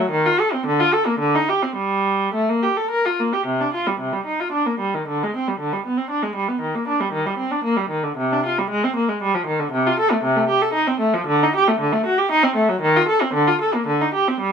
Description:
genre	classical, baroque-style suite movement for unaccompanied viola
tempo	101-121 BPM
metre	3/4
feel	rubato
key	G minor, C minor from 3.5 s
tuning	A4 = 441 Hz
part	rich viola	solo	0.0-14.5 s	C3 to Bb4	-18 LUFS	equal	none
room	light reverb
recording	minimal, uncompressed stereo recording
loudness	-18 LUFS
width	side -7 dB against mid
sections	0.0-3.5 A section; 3.5-14.5 A section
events	none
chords	none

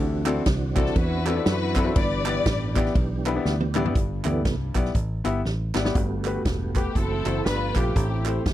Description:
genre	uptempo gospel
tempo	120 BPM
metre	4/4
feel	swing 60% on 8ths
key	G major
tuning	A4 = 440 Hz
part	warm grand piano	accompaniment	0.0-8.5 s	G2 to E5	-28 LUFS	left 4 dB	none
part	tonewheel organ	sustained chords	0.0-8.5 s	E3 to G4	-31 LUFS	right 5 dB	slow rotary speaker, chorus vibrato
part	fingered electric bass	bass	0.0-8.5 s	E1 to F#2	-27 LUFS	equal	none
part	swinging big-band drum kit	drums	0.3-8.5 s	hi-hat, kick drum, ride cymbal, snare drum, toms	-25 LUFS	equal	none
part	group handclap	percussion	0.3-8.3 s	none	-33 LUFS	right 12 dB	none
part	warm studio string section	melody	0.8-3.0, 6.8-8.5 s	C4 to D5	-29 LUFS	left 4 dB	none
part	clear alto saxophone	melody	6.8-8.4 s	G4 to B4	-33 LUFS	right 5 dB	none
room	little or no reverb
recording	dry, close 1970s-style studio recording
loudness	-22 LUFS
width	side -13 dB against mid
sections	0.0-4.0 A section; 4.0-6.0 B section; 6.0-8.5 C section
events	drum fill 3.5-4.0, 5.5-6.0; tonewheel organ solo 4.0-6.0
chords	0.0 D9; 2.0 G6; 6.0 Gmaj9; 7.0 F#m7b5; 7.5 G9; 8.0 Am7

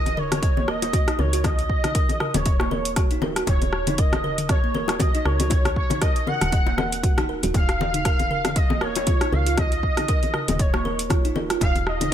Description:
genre	afro house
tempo	118 BPM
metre	4/4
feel	swing 56% on 16ths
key	Eb minor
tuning	A4 = 440 Hz
part	expressive portamento lead	melody	0.0-12.1 s	Db5 to Gb5	-27 LUFS	equal	ensemble chorus, ping-pong delay
part	kalimba	arpeggios	0.0-12.1 s	Bb3 to Eb5	-30 LUFS	right 4 dB	sidechain pumping, ping-pong delay
part	woody FM bass	bass	0.0-12.1 s	Eb1 to Db2	-28 LUFS	equal	sidechain pumping
part	afro-pop drum kit	drums	0.1-12.1 s	hi-hat, rim click, toms	-28 LUFS	equal	none
part	bongos	percussion	0.1-12.1 s	none	-29 LUFS	left 5 dB	none
part	electronic kick drum	drums	0.4-11.7 s	none	-22 LUFS	equal	none
room	digital ambience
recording	none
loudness	-19 LUFS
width	side -10 dB against mid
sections	0.0-12.1 A section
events	none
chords	0.0 Ebm7; 7.5 Bbm/Eb

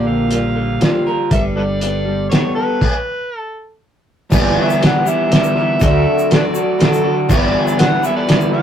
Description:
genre	folk rock and heartland rock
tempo	120 BPM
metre	3/4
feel	straight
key	unclear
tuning	A4 = 440 Hz
part	overdriven harmonica	melody	0.0-8.6 s	A4 to F#5	-21 LUFS	equal	none
part	dark upright piano	accompaniment	0.0-8.6 s	D4 to D5	-28 LUFS	right 4 dB	none
part	picked twelve-string acoustic guitar	accompaniment	0.0-8.6 s	Bb2 to B4	-23 LUFS	equal	none
part	electric guitar through a small old amp	riff	0.0-8.6 s	G2 to Bb4	-18 LUFS	equal	none
part	fingered electric bass	bass	0.0-7.5 s	G1 to D2	-21 LUFS	equal	none
part	cloth-damped thuddy drum kit	drums	0.3-8.4 s	crash cymbal, hi-hat, kick drum, snare drum	-16 LUFS	equal	none
part	egg shaker	percussion	4.3-8.5 s	none	-34 LUFS	left 6 dB	none
room	moderate booth ambience, RT60 0.2 s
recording	rough rehearsal-room recording, tube saturation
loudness	-13 LUFS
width	side -9 dB against mid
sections	0.0-4.3 A section; 4.3-8.6 B section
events	stop 2.8-4.3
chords	0.0 Bb6; 1.3 Gadd9; 2.8 N.C.; 4.3 G6; 5.8 D; 7.3 G6

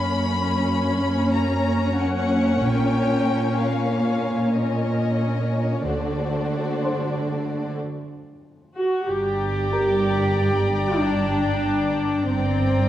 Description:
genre	cinematic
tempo	93 BPM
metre	5/4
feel	straight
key	G minor from 9.1 s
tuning	A4 = 441 Hz
part	warm chamber violin section	melody	0.0-12.9 s	D5 to B5	-31 LUFS	left 4 dB	none
part	warm chamber violin section	second line	0.0-12.9 s	C#4 to G5	-28 LUFS	left 3 dB	none
part	warm studio viola section	accompaniment	0.0-12.9 s	A3 to G4	-24 LUFS	equal	none
part	dark chamber cello section	bass	0.0-12.9 s	F#2 to D3	-26 LUFS	right 2 dB	none
part	dark baby grand piano	texture	0.0-12.9 s	Bb4 to D7	-34 LUFS	left 2 dB	none
part	dark chamber double bass section	bass	2.6-12.9 s	G1 to D2	-28 LUFS	right 2 dB	none
part	dark chamber violin section	texture	9.1-12.9 s	D6 to A6	-37 LUFS	left 4 dB	none
room	wet scoring stage reverb, RT60 1.6 s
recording	worn, warbling old tape, cassette tape, warbly pitch drift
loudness	-20 LUFS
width	side -12 dB against mid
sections	0.0-9.1 A section; 9.1-12.9 B section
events	break 7.8-9.1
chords	0.0 F#; 2.6 A#m; 5.9 D7; 9.1 Gm

